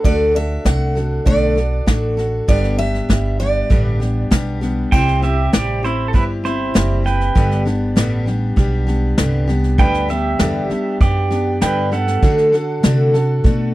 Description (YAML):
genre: honky-tonk and classic country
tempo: 98 BPM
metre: 4/4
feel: straight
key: G major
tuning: A4 = 444 Hz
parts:
  - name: picked steel-string acoustic guitar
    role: accompaniment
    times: 0.0-13.7 s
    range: G2 to A4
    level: -20 LUFS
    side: left 2 dB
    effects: none
  - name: upright bass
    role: bass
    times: 0.0-13.7 s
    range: F#1 to D3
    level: -19 LUFS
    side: right 1 dB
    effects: none
  - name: soft brush drum kit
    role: drums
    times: 0.0-13.6 s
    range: crash cymbal, hi-hat, kick drum, snare drum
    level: -16 LUFS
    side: equal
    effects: none
  - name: picked steel-string acoustic guitar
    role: melody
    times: 0.1-4.6 s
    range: D5 to F#5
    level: -23 LUFS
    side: right 2 dB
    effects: none
  - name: pedal steel guitar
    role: second line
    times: 4.9-13.7 s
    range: E4 to G5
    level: -21 LUFS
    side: right 4 dB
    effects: none
room: little or no reverb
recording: dry, close 1970s-style studio recording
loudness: -14 LUFS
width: side -17 dB against mid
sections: 0.0-4.9 A section; 4.9-13.7 B section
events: pedal steel guitar solo 4.9-13.7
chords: 0.0 D; 2.5 G; 4.9 C; 7.4 G; 12.2 D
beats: | 0.05 0.66 1.27 1.88 | 2.49 3.10 3.71 4.32 | 4.92 5.53 6.14 6.75 | 7.36 7.97 8.58 9.18 | 9.79 10.40 11.01 11.62 | 12.23 12.84 13.45